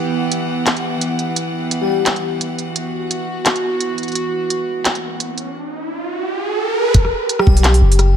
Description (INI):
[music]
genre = half-time drum and bass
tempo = 172 BPM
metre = 4/4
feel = swing 58% on 16ths, half-time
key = E minor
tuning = A4 = 439 Hz
[part]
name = bright chamber string section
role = sustained chords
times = 0.0-8.2 s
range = E3 to F#5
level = -21 LUFS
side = right 1 dB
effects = sidechain pumping
[part]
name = organic electronic drum kit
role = drums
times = 0.3-8.1 s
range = handclaps, hi-hat, rim click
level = -19 LUFS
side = equal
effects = none
[part]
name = airy dreamy lead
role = melody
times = 1.8-2.2, 7.4-7.7 s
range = G4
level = -20 LUFS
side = left 3 dB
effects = chorus, ping-pong delay
[part]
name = riser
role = sound effects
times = 5.1-6.9 s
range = none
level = -21 LUFS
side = right 2 dB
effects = none
[part]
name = long sustained 808-style bass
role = bass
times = 6.9-8.2 s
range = E1 to B1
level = -12 LUFS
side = equal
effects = tube saturation
[part]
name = electronic kick drum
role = drums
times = 6.9-7.5 s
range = none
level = -13 LUFS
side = equal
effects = none
[sound]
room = moderate lush hall reverb, RT60 1.7 s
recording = none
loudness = -16 LUFS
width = side -9 dB against mid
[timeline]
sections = 0.0-6.9 A section; 6.9-8.2 B section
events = riser 5.1-6.9; drop 6.9-8.2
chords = 0.0 Emadd9